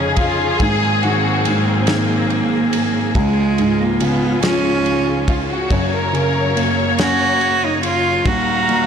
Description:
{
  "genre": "six-eight pop ballad",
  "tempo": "47 BPM (dotted quarters)",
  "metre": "6/8",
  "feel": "straight",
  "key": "F# major",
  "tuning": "A4 = 442 Hz",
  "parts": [
    { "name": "warm cello", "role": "melody", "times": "0.0-8.9 s", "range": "G#3 to F#4", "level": "-19 LUFS", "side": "right 4 dB", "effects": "none" },
    { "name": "felt-muted upright piano", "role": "accompaniment", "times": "0.0-8.9 s", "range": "D#1 to C#4", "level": "-20 LUFS", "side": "equal", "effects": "none" },
    { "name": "warm symphonic string section", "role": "sustained chords", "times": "0.0-8.9 s", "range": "C#2 to A#5", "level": "-20 LUFS", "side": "left 2 dB", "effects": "none" },
    { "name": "warm studio violin section", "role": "second line", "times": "0.2-6.8 s", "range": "E#4 to A#4", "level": "-22 LUFS", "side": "equal", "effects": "none" },
    { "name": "damped 70s drum kit", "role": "drums", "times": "0.2-8.9 s", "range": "kick drum, ride cymbal, snare drum", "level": "-24 LUFS", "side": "equal", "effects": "none" }
  ],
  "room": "moderate echo chamber reverb, RT60 2.2 s",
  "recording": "blown-out, overdriven recording, overdrive",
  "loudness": "-14 LUFS",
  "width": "side -7 dB against mid",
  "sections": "0.0-8.9 A section",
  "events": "none",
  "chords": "0.0 C#add9/E#; 0.6 G#7; 3.1 C#; 5.7 F#; 8.3 D#madd9"
}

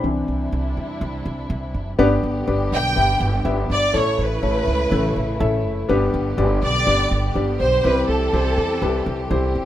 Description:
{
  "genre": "pop",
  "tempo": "123 BPM",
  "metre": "4/4",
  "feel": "straight",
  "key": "G major",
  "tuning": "A4 = 440 Hz",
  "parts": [
    { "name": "warm baby grand piano", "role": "accompaniment", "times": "0.0-9.7 s", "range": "G2 to E5", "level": "-22 LUFS", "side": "left 3 dB", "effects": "plate reverb" },
    { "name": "warm studio string section", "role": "sustained chords", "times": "0.0-9.7 s", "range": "C3 to G4", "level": "-30 LUFS", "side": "right 1 dB", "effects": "none" },
    { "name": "upright bass", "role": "bass", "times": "0.0-9.7 s", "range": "F#1 to E2", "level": "-23 LUFS", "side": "right 1 dB", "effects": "none" },
    { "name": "warm studio violin section", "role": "melody", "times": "2.7-9.5 s", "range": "A4 to G5", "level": "-21 LUFS", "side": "right 1 dB", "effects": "plate reverb" }
  ],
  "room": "moderate small room ambience, RT60 0.5 s",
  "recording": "rough home demo mix",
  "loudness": "-18 LUFS",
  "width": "side -12 dB against mid",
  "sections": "0.0-2.0 A section; 2.0-9.7 B section",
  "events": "grand piano solo 0.0-2.0",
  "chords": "0.0 Cadd9; 2.0 G; 3.9 A; 5.9 G; 7.8 C"
}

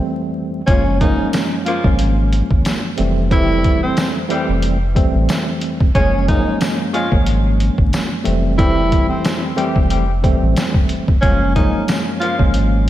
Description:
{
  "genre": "hip hop, boom-bap hip-hop",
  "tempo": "91 BPM",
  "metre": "4/4",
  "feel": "swing 55% on 16ths",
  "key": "unclear",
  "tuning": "A4 = 440 Hz",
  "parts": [
    { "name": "tine electric piano", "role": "accompaniment", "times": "0.0-12.9 s", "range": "F2 to C#4", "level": "-20 LUFS", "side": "right 1 dB", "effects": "overdrive, fast stereo tremolo, cassette tape, high-pass filter, low-pass filter" },
    { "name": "breathy tenor saxophone", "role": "melody", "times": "0.7-12.4 s", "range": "C4 to E#4", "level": "-21 LUFS", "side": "equal", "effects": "high-pass filter, low-pass filter, ping-pong delay" },
    { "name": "mellow horn section", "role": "stabs", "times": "0.7-12.4 s", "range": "C#3 to G#4", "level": "-28 LUFS", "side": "left 3 dB", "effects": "high-pass filter, low-pass filter, ping-pong delay" },
    { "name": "warm sub bass", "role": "bass", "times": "0.7-12.9 s", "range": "F1 to A1", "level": "-17 LUFS", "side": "equal", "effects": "none" },
    { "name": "trip hop sampler-style drum kit", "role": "drums", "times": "0.7-12.7 s", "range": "hi-hat, kick drum, snare drum", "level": "-18 LUFS", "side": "equal", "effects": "none" },
    { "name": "tambourine", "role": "percussion", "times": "1.3-12.1 s", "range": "none", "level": "-39 LUFS", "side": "left 4 dB", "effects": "none" }
  ],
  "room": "light reverb, studio ambience",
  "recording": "vinyl crackle",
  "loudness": "-14 LUFS",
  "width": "side -13 dB against mid",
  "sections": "0.7-12.9 A section",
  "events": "break 0.0-0.7",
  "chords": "0.0 Fmaj9; 0.7 F#maj9; 3.0 Fmaj9; 6.0 F#maj9; 8.3 Fmaj9; 11.2 F#maj9"
}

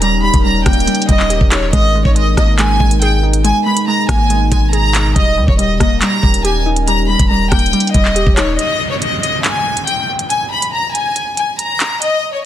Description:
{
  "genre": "hip hop, drill",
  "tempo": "140 BPM",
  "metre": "4/4",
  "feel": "half-time",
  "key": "unclear",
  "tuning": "A4 = 441 Hz",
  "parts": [
    { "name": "warm studio violin section", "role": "melody", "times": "0.0-12.4 s", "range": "C#5 to B5", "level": "-16 LUFS", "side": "left 1 dB", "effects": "none" },
    { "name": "warbly dusty pluck", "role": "accompaniment", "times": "0.0-8.6 s", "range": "G3 to G#4", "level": "-19 LUFS", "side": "equal", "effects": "chorus" },
    { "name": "deep dark ambient pad", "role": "sustained chords", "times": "0.0-8.6 s", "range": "B2 to A#4", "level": "-24 LUFS", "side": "left 1 dB", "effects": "chorus, built-in reverb" },
    { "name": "long sustained 808-style bass", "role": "bass", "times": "0.0-8.6 s", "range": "D#1 to D#2", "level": "-16 LUFS", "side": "equal", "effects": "none" },
    { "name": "drill drum kit", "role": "drums", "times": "0.0-12.1 s", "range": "handclaps, hi-hat, kick drum, rim click", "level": "-14 LUFS", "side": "equal", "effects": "vintage 12-bit sampler grit" },
    { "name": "downlifter", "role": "sound effects", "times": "8.6-12.0 s", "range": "none", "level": "-25 LUFS", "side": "equal", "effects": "none" }
  ],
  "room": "digital ambience",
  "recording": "dense, heavily limited modern master",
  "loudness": "-11 LUFS",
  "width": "side -11 dB against mid",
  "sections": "0.0-8.6 A section; 8.6-12.5 B section",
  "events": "break 8.6-12.5",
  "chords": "0.0 D#7; 1.7 G#madd9; 5.2 D#7; 8.6 N.C."
}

